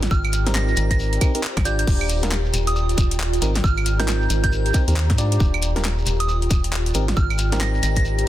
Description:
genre	UK garage, two-step garage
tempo	136 BPM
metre	4/4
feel	swing 62% on 16ths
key	unclear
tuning	A4 = 441 Hz
part	organ-like FM bass	bass	0.0-8.2 s	Eb1 to Ab2	-21 LUFS	equal	tube saturation
part	garage drum kit	drums	0.0-8.3 s	claves, crash cymbal, handclaps, hi-hat, snare drum	-27 LUFS	equal	soft clipping on snare
part	shekere	percussion	0.0-8.3 s	none	-34 LUFS	left 3 dB	none
part	ethereal airy pad	texture	0.0-8.3 s	F4 to Bb5	-29 LUFS	right 1 dB	ensemble chorus, built-in reverb, phaser, sidechain pumping
part	soft synth bell	melody	0.1-8.0 s	Eb6 to Bb6	-28 LUFS	right 4 dB	chorus, dub echo
part	electronic kick drum	drums	0.1-8.0 s	none	-20 LUFS	equal	none
part	FM electric piano	stabs	0.5-8.3 s	C4 to D5	-29 LUFS	right 1 dB	chorus, dub echo
room	digital ambience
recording	dense, heavily limited modern master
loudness	-18 LUFS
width	side -13 dB against mid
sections	0.0-8.3 A section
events	none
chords	0.0 Abmaj9; 1.9 Ebmaj9; 3.4 Abmaj9; 5.4 Ebmaj9; 6.9 Abmaj9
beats	| 0.11 0.55 0.99 1.43 | 1.87 2.31 2.76 3.20 | 3.64 4.08 4.52 4.96 | 5.40 5.84 6.29 6.73 | 7.17 7.61 8.05

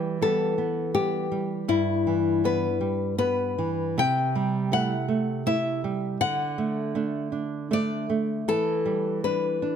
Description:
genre	romantic duo for nylon-string guitar and classical guitar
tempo	80 BPM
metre	3/4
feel	uneven beats, rubato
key	E minor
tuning	A4 = 440 Hz
part	nylon-string guitar	melody	0.0-9.8 s	E4 to G5	-26 LUFS	left 6 dB	none
part	nylon-string guitar	accompaniment	0.0-9.8 s	G2 to E4	-26 LUFS	right 4 dB	none
room	light reverb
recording	close, detailed microphones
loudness	-23 LUFS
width	side -8 dB against mid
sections	0.0-9.8 A section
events	none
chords	0.0 Em; 1.7 Em/G; 4.0 Am7/C; 6.2 D; 8.5 Em7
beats	0.22 0.95 | 1.68 2.45 3.18 | 3.99 4.72 5.46 | 6.21 6.95 7.71 | 8.47 9.23

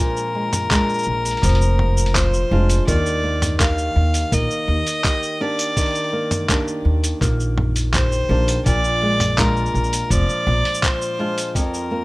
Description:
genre	folktronica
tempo	83 BPM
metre	4/4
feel	straight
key	Bb mixolydian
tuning	A4 = 440 Hz
part	warm violin	melody	0.0-12.0 s	Bb4 to F5	-23 LUFS	left 1 dB	ping-pong delay
part	flamenco guitar	arpeggios	0.0-12.0 s	F2 to G4	-24 LUFS	equal	none
part	lo-fi sampler-style drum kit	drums	0.2-11.9 s	handclaps, hi-hat, shaker, toms	-24 LUFS	equal	studio reverb
part	electronic kick drum	drums	0.7-11.7 s	none	-21 LUFS	equal	studio reverb
part	upright bass	bass	1.1-10.6 s	F1 to Eb2	-19 LUFS	equal	tube saturation
room	small room ambience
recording	rough home demo mix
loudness	-17 LUFS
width	side -21 dB against mid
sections	0.0-12.0 A section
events	none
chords	0.0 Bb7; 2.9 Ebmaj7; 8.7 Bb7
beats	0.71 1.43 2.15 | 2.88 3.60 4.32 5.04 | 5.77 6.49 7.21 7.93 | 8.66 9.38 10.10 10.83 | 11.55

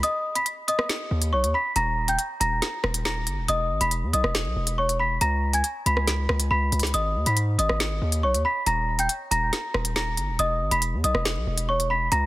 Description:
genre	hip hop, drill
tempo	139 BPM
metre	4/4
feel	half-time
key	unclear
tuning	A4 = 440 Hz
part	worn celesta	melody	0.0-12.3 s	C#5 to B6	-25 LUFS	equal	tape echo
part	drill drum kit	drums	0.0-12.2 s	hi-hat, rim click, snare drum	-27 LUFS	equal	none
part	distorted 808-style bass	bass	1.1-12.3 s	D#1 to G#2	-26 LUFS	equal	distortion
room	light reverb, digital ambience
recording	dense, heavily limited modern master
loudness	-22 LUFS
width	side -18 dB against mid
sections	0.0-12.3 A section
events	break 0.0-0.9; drum fill 6.5-6.9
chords	0.0 B; 1.8 D#5; 3.5 Emaj7(no3); 5.2 C#5; 6.9 G#m; 8.7 D#5; 10.4 Emaj7(no3)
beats	| 0.03 0.46 0.90 1.33 | 1.76 2.19 2.62 3.05 | 3.48 3.92 4.35 4.78 | 5.21 5.64 6.08 6.51 | 6.94 7.37 7.80 8.23 | 8.66 9.10 9.53 9.96 | 10.39 10.82 11.25 11.69 | 12.12

